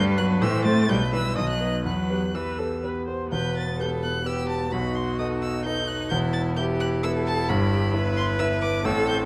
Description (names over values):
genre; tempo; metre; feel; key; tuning
quick classical-period movement for piano quartet; 129 BPM; 3/4; rubato; E minor; A4 = 440 Hz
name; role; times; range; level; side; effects
warm violin; melody; 0.0-9.2 s; A5 to A6; -34 LUFS; equal; none
bright cello; second line; 0.0-9.3 s; D#3 to B4; -30 LUFS; equal; none
warm concert grand piano; accompaniment; 0.0-9.3 s; E1 to E5; -28 LUFS; equal; none
warm viola; accompaniment; 0.0-9.3 s; B3 to D#5; -35 LUFS; equal; none
room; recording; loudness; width
moderate recital hall reverb, RT60 1.4 s; close, detailed microphones, vinyl crackle; -25 LUFS; mono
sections
0.0-3.3 A section; 3.3-9.3 A section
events
none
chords
0.4 Am; 0.9 Em/B; 1.4 B; 1.9 Em; 4.7 B7; 6.1 Em; 7.5 Em/G